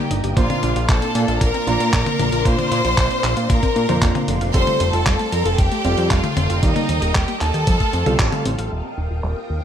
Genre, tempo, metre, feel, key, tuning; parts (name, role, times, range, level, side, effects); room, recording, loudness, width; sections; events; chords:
italo disco; 115 BPM; 4/4; straight; Bb major; A4 = 438 Hz
bright studio violin section; melody; 0.0-8.4 s; Eb4 to C6; -23 LUFS; left 1 dB; digital delay, shimmer reverb
string machine, full ensemble; sustained chords; 0.0-9.6 s; Bb3 to Eb6; -27 LUFS; equal; phaser, ensemble chorus, shimmer reverb
analog pluck; arpeggios; 0.0-9.5 s; G3 to G4; -30 LUFS; left 2 dB; chorus, cassette tape, tape echo, shimmer reverb
warm baby grand piano; stabs; 0.0-8.7 s; Bb2 to C5; -26 LUFS; right 4 dB; vintage 12-bit sampler grit, shimmer reverb
fat analog bass; bass; 0.1-9.6 s; Eb1 to Bb2; -22 LUFS; equal
dusty soul sampler-style drum kit; drums; 0.1-9.3 s; crash cymbal, handclaps, hi-hat, toms; -25 LUFS; left 2 dB; low-pass filter on hats, low-pass filter on cymbals, low-pass filter on toms, low-pass filter on snare
electronic kick drum; drums; 0.4-8.3 s; -19 LUFS; equal
light reverb; -16 LUFS; side -9 dB against mid
0.0-8.7 A section
band accent 8.2
0.4 Bbadd9; 4.5 Fadd9; 6.6 Eb; 7.7 Fadd9; 8.7 Ebadd9